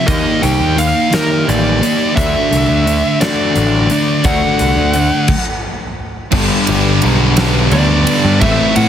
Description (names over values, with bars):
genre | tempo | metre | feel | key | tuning
quiet-loud alternative rock | 58 BPM (dotted quarters) | 6/8 | straight | unclear | A4 = 440 Hz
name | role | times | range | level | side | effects
dark smooth lead guitar | melody | 0.0-8.9 s | Bb4 to G5 | -18 LUFS | right 2 dB | overdrive, plate reverb
electric guitar through a small old amp | arpeggios | 0.0-5.3 s | D3 to F#4 | -22 LUFS | left 3 dB | plate reverb
thick fuzz guitar | riff | 0.0-8.9 s | G2 to E4 | -15 LUFS | left 1 dB | distortion
growling picked electric bass | bass | 0.1-8.9 s | G1 to A2 | -15 LUFS | equal | overdrive
huge arena drum kit | drums | 0.1-8.9 s | crash cymbal, hi-hat, kick drum, ride cymbal, snare drum | -19 LUFS | equal | none
distorted electric guitar | riff | 6.3-8.9 s | G2 to A3 | -18 LUFS | right 1 dB | overdrive
room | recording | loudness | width
light reverb | heavily compressed radio sound | -11 LUFS | side -9 dB against mid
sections
0.0-6.3 A section; 6.3-8.9 B section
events
stop 5.3-6.3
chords
0.1 Eb; 2.2 D; 6.3 G